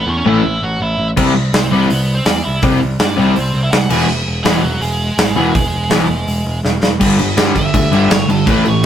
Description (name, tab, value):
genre	punk rock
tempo	164 BPM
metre	4/4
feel	straight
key	unclear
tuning	A4 = 441 Hz
part	nasal lead guitar with a parked wah	melody	0.0-8.8 s	F#3 to G#5	-21 LUFS	right 2 dB	overdrive
part	modern bright picked electric bass	bass	0.0-8.9 s	E1 to G2	-19 LUFS	equal	none
part	crunchy overdriven guitar	riff	0.3-8.8 s	E2 to C4	-16 LUFS	left 3 dB	none
part	sludgy distorted guitar	riff	0.3-8.9 s	G2 to E4	-20 LUFS	right 5 dB	overdrive
part	big rock drum kit	drums	1.2-8.9 s	crash cymbal, hi-hat, kick drum, snare drum	-16 LUFS	right 1 dB	none
room	light reverb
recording	rough rehearsal-room recording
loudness	-12 LUFS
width	side -10 dB against mid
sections	0.0-7.0 A section; 7.0-8.9 B section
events	drum fill 6.6-7.0; lead electric guitar solo 7.0-8.9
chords	0.0 A; 1.2 C; 3.9 E; 7.0 G5